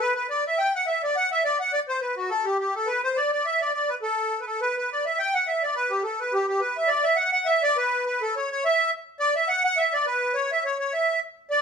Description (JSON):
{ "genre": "celtic folk", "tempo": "208 BPM", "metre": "4/4", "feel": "swing 53% on 8ths", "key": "E minor", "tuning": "A4 = 440 Hz", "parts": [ { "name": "accordion", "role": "solo", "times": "0.0-11.6 s", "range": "F#4 to G5", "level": "-22 LUFS", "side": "equal", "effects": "light tremolo tuning" } ], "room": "moderate large studio reverb, RT60 0.9 s", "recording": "band playing live in one room", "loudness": "-22 LUFS", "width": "side -6 dB against mid", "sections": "0.0-6.9 A section; 6.9-11.6 B section", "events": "none", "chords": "none", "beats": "0.27 0.56 0.85 | 1.14 1.43 1.72 2.00 | 2.29 2.58 2.87 3.16 | 3.45 3.73 4.02 4.31 | 4.60 4.89 5.18 5.46 | 5.75 6.04 6.33 6.62 | 6.90 7.19 7.48 7.77 | 8.05 8.34 8.63 8.92 | 9.20 9.49 9.78 10.07 | 10.35 10.64 10.93 11.22 | 11.51" }